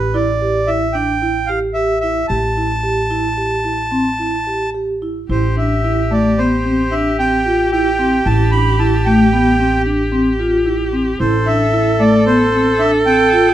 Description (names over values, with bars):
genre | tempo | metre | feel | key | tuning
contemporary instrumental, chamber music in an uneven meter | 224 BPM (eighths) | 11/8 | straight | A minor | A4 = 440 Hz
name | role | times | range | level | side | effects
accordion | melody | 0.0-13.5 s | B4 to B5 | -18 LUFS | right 2 dB | none
upright bass | bass | 0.0-13.5 s | A1 | -21 LUFS | equal | none
vibraphone with soft mallets | arpeggios | 0.1-13.5 s | A3 to G4 | -17 LUFS | equal | none
clear viola | second line | 5.3-13.5 s | G4 to A4 | -19 LUFS | right 1 dB | none
room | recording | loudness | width
moderate studio reverb, RT60 0.8 s | dark, warm production | -13 LUFS | side -12 dB against mid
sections
0.0-5.3 A section; 5.3-13.5 B section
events
none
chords
0.0 G5/A; 2.3 A7(no3); 5.3 Am7